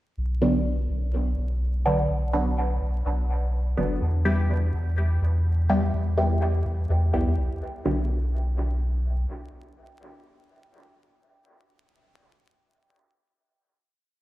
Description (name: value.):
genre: dub techno.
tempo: 125 BPM.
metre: 4/4.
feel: swing 54% on 16ths.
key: B minor.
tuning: A4 = 440 Hz.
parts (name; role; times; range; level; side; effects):
soft dub sub bass; bass; 0.2-9.3 s; F#1 to E2; -24 LUFS; equal; none.
filtered dub chord stab; stabs; 0.4-11.0 s; D3 to G4; -27 LUFS; equal; phaser, cassette tape, dub echo.
room: light reverb.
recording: played on a big sound system in a bare room, large studio reverb, vinyl crackle.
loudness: -22 LUFS.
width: side -16 dB against mid.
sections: 0.2-7.9 groove; 7.9-11.7 final chord.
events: none.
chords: 0.2 Bm; 4.0 Em; 7.9 Bm.